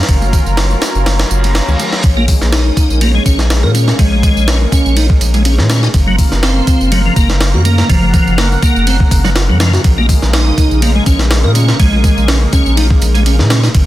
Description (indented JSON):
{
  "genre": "breakbeat, breaks",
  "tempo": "123 BPM",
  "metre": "4/4",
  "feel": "swing 54% on 16ths",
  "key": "Bb minor",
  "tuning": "A4 = 438 Hz",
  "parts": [
    { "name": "lush unison pad", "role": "sustained chords", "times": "0.0-13.9 s", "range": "Db3 to Gb5", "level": "-20 LUFS", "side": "equal", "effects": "chorus, sidechain pumping" },
    { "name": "saturated sub bass", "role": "bass", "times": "0.0-13.9 s", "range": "Gb1 to Bb2", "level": "-12 LUFS", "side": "equal", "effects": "none" },
    { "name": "breakbeat sampler-style drum kit", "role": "drums", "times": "0.0-13.9 s", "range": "hi-hat, kick drum, ride cymbal, snare drum", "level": "-13 LUFS", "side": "equal", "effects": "studio reverb" },
    { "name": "tambourine", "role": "drums", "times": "0.1-13.9 s", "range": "none", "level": "-27 LUFS", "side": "right 7 dB", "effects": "overdrive, studio reverb" },
    { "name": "congas and bongos", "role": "percussion", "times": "0.2-13.6 s", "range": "none", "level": "-26 LUFS", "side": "left 4 dB", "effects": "none" },
    { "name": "reverse cymbal", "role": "sound effects", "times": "1.3-2.0 s", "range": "none", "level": "-22 LUFS", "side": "equal", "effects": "none" },
    { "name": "tonewheel organ", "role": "riff", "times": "2.2-13.7 s", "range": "F3 to Bb4", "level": "-16 LUFS", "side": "equal", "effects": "chorus vibrato, slow rotary speaker, dub echo" }
  ],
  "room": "digital ambience",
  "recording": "dense, heavily limited modern master",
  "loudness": "-9 LUFS",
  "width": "side -14 dB against mid",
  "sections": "0.0-13.9 A section",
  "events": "kick drops out 1.1-2.0; reverse cymbal 1.3-2.0",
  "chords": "0.0 Gbmaj7; 2.0 Bbm7; 5.9 Gbmaj7; 9.8 Bbm7",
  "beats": "| 0.09 0.58 1.06 1.55 | 2.04 2.53 3.02 3.50 | 3.99 4.48 4.97 5.46 | 5.94 6.43 6.92 7.41 | 7.89 8.38 8.87 9.36 | 9.85 10.33 10.82 11.31 | 11.80 12.29 12.77 13.26 | 13.75"
}